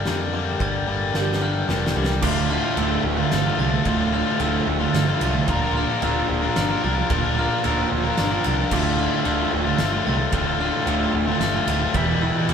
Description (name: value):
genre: post-rock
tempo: 111 BPM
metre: 3/4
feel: straight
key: D minor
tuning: A4 = 440 Hz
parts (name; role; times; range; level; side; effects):
- pedal steel guitar; sustained chords; 0.0-12.5 s; F4 to E6; -37 LUFS; right 5 dB; none
- glockenspiel with hard plastic mallets; arpeggios; 0.0-12.5 s; D6 to A6; -33 LUFS; right 6 dB; none
- mellow electric guitar; arpeggios; 0.0-12.5 s; D2 to G4; -30 LUFS; equal; phaser
- tight distorted guitar; riff; 0.0-12.5 s; D2 to Bb4; -23 LUFS; left 6 dB; distortion
- picked electric bass; bass; 0.0-12.5 s; D1 to F2; -27 LUFS; right 1 dB; none
- oversized low-tuned drum kit; drums; 0.1-12.5 s; crash cymbal, kick drum, ride cymbal, snare drum; -28 LUFS; right 1 dB; none
- sludgy distorted guitar; riff; 2.2-12.5 s; D2 to Bb4; -25 LUFS; right 7 dB; overdrive
room: moderate stone room reverb, RT60 1.2 s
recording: band playing live in one room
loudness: -19 LUFS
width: side -7 dB against mid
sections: 0.0-2.2 A section; 2.2-12.5 B section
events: build-up 0.0-2.2; drum fill 1.2-2.2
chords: 0.0 Gm7; 2.2 Dm; 5.5 Bbadd9/D; 8.7 Dm; 12.0 Edim